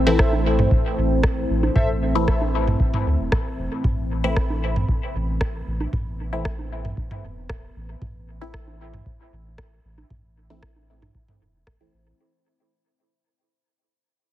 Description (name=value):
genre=dub techno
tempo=115 BPM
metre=4/4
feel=straight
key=A minor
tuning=A4 = 440 Hz
part: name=deep dark ambient pad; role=sustained chords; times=0.0-12.2 s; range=A3 to C5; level=-28 LUFS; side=equal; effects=chorus, built-in reverb, sidechain pumping
part: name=soft dub sub bass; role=bass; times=0.0-12.1 s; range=E1 to D2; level=-25 LUFS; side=equal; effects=sidechain pumping
part: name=filtered dub chord stab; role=stabs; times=0.1-12.1 s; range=E3 to E4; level=-27 LUFS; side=left 2 dB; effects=phaser, sidechain pumping, dub echo
part: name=warbly lo-fi synth keys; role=riff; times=0.2-2.4 s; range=A4 to E5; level=-30 LUFS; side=left 1 dB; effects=chorus, sidechain pumping, dub echo
part: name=electronic kick drum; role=drums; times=0.2-11.8 s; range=none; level=-23 LUFS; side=equal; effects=none
part: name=electronic rim click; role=drums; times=0.2-11.8 s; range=none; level=-30 LUFS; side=equal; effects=dub echo
part: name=electronic bongos and toms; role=percussion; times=0.3-11.4 s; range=none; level=-28 LUFS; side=right 2 dB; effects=sidechain pumping on toms, sidechain pumping on perc, dub echo
room=light reverb, digital ambience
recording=heavily compressed radio sound, multiband compression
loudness=-20 LUFS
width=side -13 dB against mid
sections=0.0-12.2 A section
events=fade-out 0.0-12.2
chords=0.0 Am